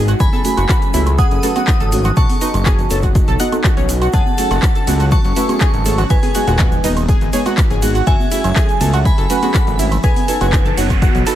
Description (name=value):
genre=progressive house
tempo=122 BPM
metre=4/4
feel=straight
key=F# dorian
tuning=A4 = 440 Hz
part: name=airy breathy pad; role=sustained chords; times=0.0-11.4 s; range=F#3 to A4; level=-27 LUFS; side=left 1 dB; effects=chorus, sidechain pumping
part: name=analog pluck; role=arpeggios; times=0.0-11.3 s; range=C#4 to F#5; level=-23 LUFS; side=equal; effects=lush chorus, sidechain pumping, ping-pong delay
part: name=deep mellow chord stab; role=stabs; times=0.0-11.4 s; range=G#3 to D#5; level=-23 LUFS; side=right 2 dB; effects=chorus, sidechain pumping, ping-pong delay
part: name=fat analog bass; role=bass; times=0.0-11.2 s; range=D#1 to C#2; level=-18 LUFS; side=equal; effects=sidechain pumping
part: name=deep house drum kit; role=drums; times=0.1-11.4 s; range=handclaps, hi-hat, ride cymbal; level=-25 LUFS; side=left 1 dB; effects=overdrive
part: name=tube shaker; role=percussion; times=0.1-11.4 s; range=none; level=-32 LUFS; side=right 6 dB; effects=none
part: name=woodblock and congas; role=percussion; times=0.1-11.2 s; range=none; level=-26 LUFS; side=right 3 dB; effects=sidechain pumping on perc
part: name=glassy synth bell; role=melody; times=0.2-10.7 s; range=B4 to D#6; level=-24 LUFS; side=equal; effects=chorus, phaser, ping-pong delay
part: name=airy dreamy lead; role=second line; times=0.2-10.7 s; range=G#5 to D#6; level=-29 LUFS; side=equal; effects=chorus, phaser, sidechain pumping, ping-pong delay
part: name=electronic kick drum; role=drums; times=0.2-11.1 s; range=none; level=-15 LUFS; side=equal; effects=overdrive
part: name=noise sweep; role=sound effects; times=10.6-11.4 s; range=none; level=-26 LUFS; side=right 7 dB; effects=none
room=digital ambience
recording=none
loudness=-12 LUFS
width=side -12 dB against mid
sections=0.0-11.4 A section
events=noise sweep 10.6-11.4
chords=0.2 F#madd9; 2.2 B; 4.1 F#madd9; 6.1 G#m; 8.1 F#madd9; 10.0 B